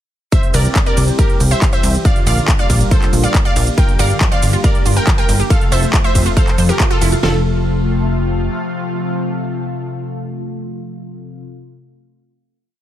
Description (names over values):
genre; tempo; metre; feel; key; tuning
uplifting trance; 139 BPM; 4/4; straight; F major; A4 = 441 Hz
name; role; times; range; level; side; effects
wide unison pluck; melody; 0.3-11.4 s; F4 to G5; -21 LUFS; equal; sidechain pumping, ping-pong delay
analog string pad; sustained chords; 0.3-11.4 s; C3 to G4; -22 LUFS; left 1 dB; ensemble chorus, sidechain pumping
big-room dance drum kit; drums; 0.3-7.3 s; kick drum, snare drum; -14 LUFS; equal; none
big-room dance drum kit; drums; 0.3-7.2 s; handclaps, hi-hat, ride cymbal, shaker; -22 LUFS; right 1 dB; sidechain pumping on hats, sidechain pumping on perc, sidechain pumping on cymbals
plucky analog bass; bass; 0.5-8.5 s; F1 to F2; -16 LUFS; equal; sidechain pumping
wide unison pluck; arpeggios; 3.8-7.4 s; F3 to F5; -24 LUFS; right 4 dB; flanger, sidechain pumping, ping-pong delay
room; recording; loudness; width
little or no reverb; none; -12 LUFS; side -12 dB against mid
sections
0.3-7.2 drop; 7.2-10.7 final chord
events
drop 0.3-7.2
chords
0.3 C; 2.0 Bb6; 3.8 Gm; 5.5 F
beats
| 0.32 0.76 1.19 1.62 | 2.05 2.48 2.91 3.35 | 3.78 4.21 4.64 5.07 | 5.50 5.93 6.37 6.80 | 7.23 7.66 8.09 8.53 | 8.96 9.39 9.82 10.25